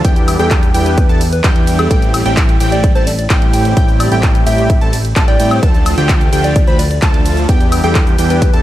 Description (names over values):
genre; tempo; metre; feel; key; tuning
EDM, festival progressive house; 129 BPM; 4/4; straight; A minor; A4 = 439 Hz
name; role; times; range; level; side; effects
plucky unison lead; arpeggios; 0.0-8.6 s; G5 to B5; -21 LUFS; right 1 dB; sidechain pumping, dub echo
supersaw chords; riff; 0.0-8.6 s; F3 to B4; -18 LUFS; equal; sidechain pumping, dub echo
fat analog bass; bass; 0.0-8.6 s; A1 to A2; -16 LUFS; equal; tube saturation, sidechain pumping
electronic kick drum; drums; 0.0-8.5 s; none; -12 LUFS; equal; overdrive
house drum kit; drums; 0.0-8.6 s; cabasa, handclaps, hi-hat, ride cymbal, woodblock; -21 LUFS; left 1 dB; overdrive
soft struck synth lead; melody; 0.4-8.6 s; A4 to G5; -21 LUFS; left 1 dB; chorus, cassette tape, dub echo
room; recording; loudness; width
little or no reverb; dark, warm production; -10 LUFS; side -14 dB against mid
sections
0.0-8.6 A section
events
none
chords
0.0 Em7; 1.9 Am7; 5.6 Dm; 7.5 Em7